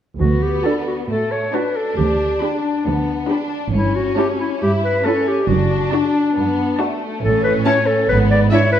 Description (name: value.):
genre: quick classical-period movement for symphony orchestra.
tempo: 137 BPM.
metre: 4/4.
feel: rubato.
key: D major.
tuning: A4 = 442 Hz.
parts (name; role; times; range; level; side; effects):
clear clarinet; second line; 0.2-8.8 s; D4 to D5; -19 LUFS; left 2 dB; none.
rich studio violin section; second line; 0.2-8.8 s; A3 to E4; -24 LUFS; left 3 dB; none.
clear studio double bass section; bass; 0.2-8.4 s; F#1 to D2; -22 LUFS; right 3 dB; none.
dark studio cello section; bass; 0.2-8.5 s; D2 to A2; -21 LUFS; right 2 dB; none.
rich studio viola section; accompaniment; 0.6-8.6 s; C#4 to G4; -23 LUFS; right 1 dB; none.
rich studio violin section; melody; 0.7-8.6 s; E5 to B5; -30 LUFS; left 4 dB; none.
room: wet recital hall reverb, RT60 1.5 s.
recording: dark, warm production.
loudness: -16 LUFS.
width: side -10 dB against mid.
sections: 0.2-8.8 A section.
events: none.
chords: 0.2 D; 2.0 G/D; 3.7 A7/G; 5.5 D/F#; 7.2 A; 8.1 E/G#.